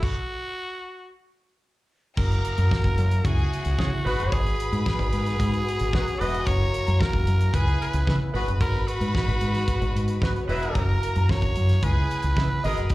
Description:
disco; 112 BPM; 4/4; straight; G# minor; A4 = 440 Hz
breathy tenor saxophone; melody; 0.0-12.9 s; F#4 to D#5; -30 LUFS; right 1 dB; plate reverb, slapback echo
mellow French horn section; sustained chords; 0.0-12.9 s; B2 to F#4; -34 LUFS; left 1 dB; plate reverb
damped 70s drum kit; drums; 0.0-12.9 s; crash cymbal, hi-hat, kick drum, snare drum; -27 LUFS; equal; slapback echo
clear studio string section; second line; 2.2-12.9 s; A#3 to B5; -34 LUFS; left 1 dB; plate reverb, slapback echo
deep dub fingered electric bass; bass; 2.2-12.9 s; E1 to C#3; -23 LUFS; equal
mellow horn section; stabs; 3.8-12.8 s; E3 to D#5; -31 LUFS; equal; plate reverb, slapback echo
little or no reverb; live gig heard through the venue's PA, club reverb; -21 LUFS; side -18 dB against mid
0.0-2.2 A section; 2.2-12.9 A section
stop 0.0-2.2
0.0 N.C.; 2.2 F#7; 3.2 C#m7; 4.0 G#m7; 6.5 F#7; 7.5 C#m7; 8.3 G#m7; 10.8 F#7; 11.8 C#m7
| 0.03 0.56 1.10 1.64 | 2.17 2.71 3.25 3.78 | 4.32 4.85 5.39 5.92 | 6.46 7.00 7.53 8.07 | 8.61 9.14 9.68 10.22 | 10.75 11.29 11.83 12.36 | 12.90

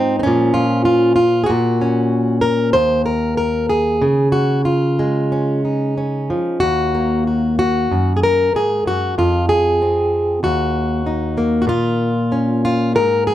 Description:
folk, solo fingerstyle acoustic guitar; 95 BPM; 4/4; rubato; Eb dorian; A4 = 440 Hz
fingerpicked plugged-in steel-string acoustic guitar; solo; 0.0-13.3 s; Eb2 to C5; -14 LUFS; equal
light reverb; -14 LUFS; side -13 dB against mid
0.0-13.3 A section
0.3 Bbm; 1.5 Gb/Bb; 2.8 N.C.; 4.0 Dbadd9; 6.6 Ebm; 7.9 Gbadd9; 9.2 Fm; 10.4 Ebm; 11.7 Bbm
0.27 0.88 | 1.50 2.13 2.75 3.38 | 4.02 4.66 5.31 5.96 | 6.61 7.26 7.91 8.55 | 9.18 9.81 10.43 11.05 | 11.68 12.32 12.95

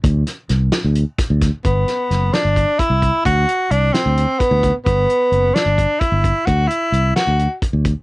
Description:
progressive instrumental, band music in an uneven meter; 261 BPM (eighths); 7/8; straight; G major; A4 = 441 Hz
fingered electric bass; bass; 0.0-7.9 s; F#1 to D2; -16 LUFS; equal
warm soul drum kit; drums; 0.0-8.0 s; hi-hat, kick drum, snare drum; -20 LUFS; equal; cassette tape
breathy tenor saxophone; melody; 1.6-7.6 s; B3 to F#4; -17 LUFS; equal; cassette tape
moderate booth ambience, RT60 0.2 s; home recording on cassette; -14 LUFS; side -21 dB against mid
0.0-1.6 A section; 1.6-8.0 B section
0.0 Csus2; 1.6 Gmaj7; 3.3 D7; 4.9 Gmaj7; 6.5 D9
| 0.04 0.27 0.50 0.73 0.95 1.19 1.41 | 1.64 1.87 2.10 2.33 2.56 2.79 3.02 | 3.25 3.48 3.71 3.94 4.17 4.40 4.63 | 4.86 5.09 5.32 5.55 5.78 6.01 6.24 | 6.47 6.70 6.93 7.16 7.39 7.62 7.85

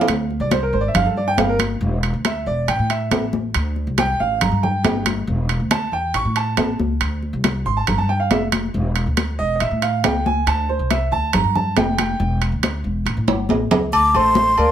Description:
latin, Cuban son and guajira; 139 BPM; 4/4; straight; D minor; A4 = 440 Hz
clear grand piano; arpeggios; 0.0-14.7 s; A3 to C#6; -21 LUFS; right 3 dB
upright bass; bass; 0.0-14.7 s; E1 to A2; -22 LUFS; equal
timbales and agogo bells; percussion; 0.0-14.7 s; -22 LUFS; right 4 dB
congas; percussion; 0.1-14.7 s; -23 LUFS; left 3 dB
breathy mellow silver concert flute; melody; 13.9-14.7 s; C6 to D6; -14 LUFS; left 1 dB
moderate studio reverb, RT60 0.8 s; -17 LUFS; side -10 dB against mid
0.1-13.9 A section
grand piano solo 0.1-13.9; drum fill 13.3-13.9
0.1 Bb9 (rootless); 0.9 G7sus2; 1.8 Dsus2/E; 2.7 A5; 3.5 D5; 4.4 Gm; 5.3 Em7; 6.1 A; 7.0 G#; 7.9 Fmaj9; 8.7 Dsus2/E; 9.6 A; 10.5 C69; 11.3 Fadd9; 12.2 Em7; 13.1 A7; 13.9 D5
| 0.08 0.52 0.95 1.38 | 1.82 2.25 2.68 3.12 | 3.55 3.98 4.41 4.85 | 5.28 5.71 6.14 6.58 | 7.01 7.44 7.88 8.31 | 8.74 9.17 9.61 10.04 | 10.47 10.90 11.34 11.77 | 12.20 12.63 13.06 13.50 | 13.93 14.36

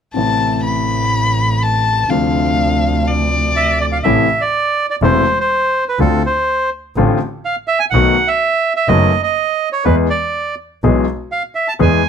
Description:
tango; 124 BPM; 4/4; rubato; A harmonic minor; A4 = 440 Hz
rich violin; second line; 0.1-4.0 s; D5 to B5; -18 LUFS; left 4 dB
warm concert grand piano; accompaniment; 0.1-12.0 s; E1 to G#4; -17 LUFS; left 3 dB
dark double bass; bass; 0.1-12.0 s; E1 to E2; -18 LUFS; right 2 dB
bandoneon; melody; 3.6-12.1 s; A4 to A5; -15 LUFS; right 3 dB
light reverb; close, detailed microphones; -13 LUFS; side -7 dB against mid
0.1-4.0 A section; 4.0-12.1 B section
0.1 Am; 2.1 Dm7; 4.0 Am; 6.0 Dm7; 7.9 B7; 9.9 E
| 0.15 0.64 1.12 1.61 | 2.10 2.58 3.07 3.56 | 4.05 4.53 5.02 5.50 | 5.99 6.47 6.96 7.44 | 7.92 8.41 8.89 9.37 | 9.86 10.34 10.83 11.31 | 11.80

